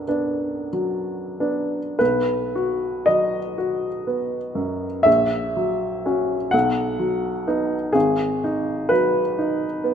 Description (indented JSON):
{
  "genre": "classical, romantic nocturne for solo piano",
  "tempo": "30-43 BPM (dotted quarters)",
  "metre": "6/8",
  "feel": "rubato",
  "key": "B major",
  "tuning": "A4 = 439 Hz",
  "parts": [
    { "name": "warm upright piano", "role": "solo", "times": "0.0-9.9 s", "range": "G#1 to F#5", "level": "-20 LUFS", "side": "equal", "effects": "none" }
  ],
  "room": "moderate concert hall reverb, RT60 2.2 s",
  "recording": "close, detailed microphones",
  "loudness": "-20 LUFS",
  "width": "side -8 dB against mid",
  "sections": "0.0-2.0 A section; 2.0-9.9 B section",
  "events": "none",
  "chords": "0.0 Bm; 2.0 B; 5.1 F#/A#; 6.5 B; 8.0 G#m7",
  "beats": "0.07 | 2.00 3.58 | 5.07 6.54 | 7.95 9.38"
}